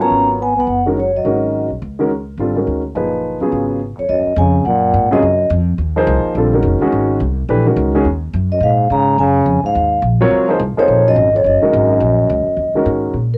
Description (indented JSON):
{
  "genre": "jazz",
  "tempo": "212 BPM",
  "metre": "4/4",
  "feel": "swing 60% on 8ths",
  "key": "Eb dorian from 4.1 s",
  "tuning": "A4 = 440 Hz",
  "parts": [
    { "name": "vibraphone with soft mallets", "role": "melody", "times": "0.0-1.7, 4.0-5.5, 8.5-13.4 s", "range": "Bb4 to Bb5", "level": "-17 LUFS", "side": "equal", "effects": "cassette tape" },
    { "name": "breathy trombone", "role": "second line", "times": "0.0-1.7, 4.0-5.5, 8.5-12.8 s", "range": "F2 to Db4", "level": "-21 LUFS", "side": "equal", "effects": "cassette tape" },
    { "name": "warm baby grand piano", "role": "accompaniment", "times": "0.0-8.0, 10.2-13.1 s", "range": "Bb2 to Db5", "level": "-18 LUFS", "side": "equal", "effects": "cassette tape" },
    { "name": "upright bass", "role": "bass", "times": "0.0-13.4 s", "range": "F1 to Bb2", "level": "-21 LUFS", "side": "equal", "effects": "none" }
  ],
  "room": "moderate small room reverb, RT60 0.6 s",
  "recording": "home recording on cassette",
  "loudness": "-15 LUFS",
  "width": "mono",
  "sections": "0.0-4.1 A section; 4.1-13.1 B section",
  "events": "none",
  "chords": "0.0 Db9sus4; 4.1 Ebm11"
}